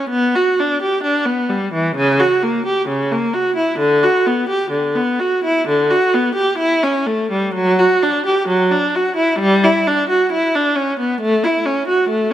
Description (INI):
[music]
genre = classical, baroque-style suite movement for unaccompanied viola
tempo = 65 BPM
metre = 4/4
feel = rubato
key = B minor, D major from 7.6 s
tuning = A4 = 438 Hz
[part]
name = rich viola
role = solo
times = 0.0-12.3 s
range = C#3 to G4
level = -14 LUFS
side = equal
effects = none
[sound]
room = moderate recital hall reverb, RT60 1.6 s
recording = none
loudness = -14 LUFS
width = side -11 dB against mid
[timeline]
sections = 0.0-12.3 A section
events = none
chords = none